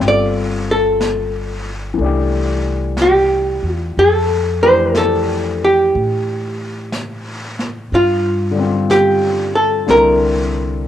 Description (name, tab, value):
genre	jazz ballad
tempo	61 BPM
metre	4/4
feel	swing 66% on 8ths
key	F major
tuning	A4 = 440 Hz
part	archtop guitar, miked and amplified	melody	0.0-10.9 s	F4 to D5	-14 LUFS	equal	none
part	warm grand piano	accompaniment	0.0-10.9 s	D3 to A4	-22 LUFS	left 6 dB	cassette tape
part	upright bass	bass	0.0-10.9 s	G1 to A2	-21 LUFS	equal	none
part	jazz brush drum kit	drums	0.0-10.9 s	brushed snare drum, hi-hat, snare drum	-28 LUFS	equal	cassette tape
room	light reverb, studio reverb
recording	home recording on cassette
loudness	-13 LUFS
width	side -11 dB against mid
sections	0.0-10.9 A section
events	none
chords	0.0 Gsus2; 2.0 Cadd9; 4.0 Fmaj9; 7.9 G5; 9.9 C7